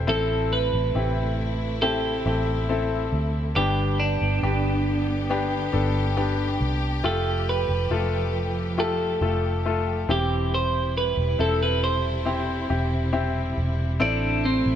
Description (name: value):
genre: pop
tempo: 69 BPM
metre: 4/4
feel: straight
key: A minor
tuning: A4 = 441 Hz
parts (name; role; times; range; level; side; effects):
- bright concert grand piano; accompaniment; 0.0-14.8 s; G2 to G5; -28 LUFS; left 4 dB; none
- warm studio string section; sustained chords; 0.0-14.8 s; C3 to G4; -33 LUFS; equal; none
- vintage muted fingered electric bass; bass; 0.0-14.8 s; E1 to D2; -26 LUFS; equal; none
- twelve-string electric guitar; melody; 0.1-14.8 s; C4 to C5; -26 LUFS; right 2 dB; none
room: light reverb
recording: nothing above 10.9 kHz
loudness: -22 LUFS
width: side -10 dB against mid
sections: 0.0-14.8 A section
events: none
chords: 0.1 Am; 3.6 G; 7.0 Fadd9; 10.1 C/E; 14.0 Am